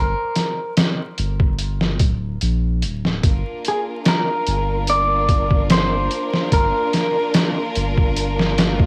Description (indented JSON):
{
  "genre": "trip hop",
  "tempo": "73 BPM",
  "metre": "4/4",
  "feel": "swing 54% on 16ths",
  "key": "G minor",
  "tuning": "A4 = 440 Hz",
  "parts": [
    { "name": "clean electric guitar", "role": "melody", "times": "0.0-7.3 s", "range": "Ab4 to D5", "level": "-24 LUFS", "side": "equal", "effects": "tape echo" },
    { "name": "soft dub sub bass", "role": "bass", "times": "0.0-8.9 s", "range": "D1 to D2", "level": "-24 LUFS", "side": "equal", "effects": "none" },
    { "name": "trip hop sampler-style drum kit", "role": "drums", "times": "0.4-8.9 s", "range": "hi-hat, kick drum, snare drum", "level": "-21 LUFS", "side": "equal", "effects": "studio reverb" },
    { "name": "rich studio violin section", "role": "sustained chords", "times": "3.2-8.9 s", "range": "Bb3 to Bb4", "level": "-27 LUFS", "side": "equal", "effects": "cassette tape" }
  ],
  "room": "light reverb",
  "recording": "home recording on cassette, vinyl crackle",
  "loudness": "-19 LUFS",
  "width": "mono",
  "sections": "0.0-8.9 A section",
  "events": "none",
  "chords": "0.0 Gm7",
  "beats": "0.77 1.59 2.41 | 3.23 4.06 4.88 5.70 | 6.52 7.34 8.17"
}